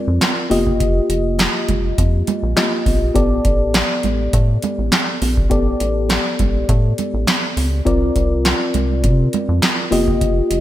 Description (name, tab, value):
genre	early-eighties boogie funk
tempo	102 BPM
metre	4/4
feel	straight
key	A phrygian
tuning	A4 = 440 Hz
part	mellow FM electric piano	accompaniment	0.0-10.6 s	A3 to Eb5	-20 LUFS	left 2 dB	chorus, slapback echo
part	rubbery square bass	bass	0.1-10.6 s	F1 to C3	-19 LUFS	equal	none
part	booming analog drum machine	drums	0.2-10.6 s	handclaps, hi-hat, kick drum, snare drum	-18 LUFS	equal	none
part	congas	percussion	0.2-10.4 s	none	-26 LUFS	right 6 dB	none
room	light reverb, digital ambience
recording	none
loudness	-15 LUFS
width	side -13 dB against mid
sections	0.0-10.6 A section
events	none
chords	0.0 C9sus4; 0.5 F9sus4; 3.2 A9sus4; 7.9 C9sus4; 9.9 F9sus4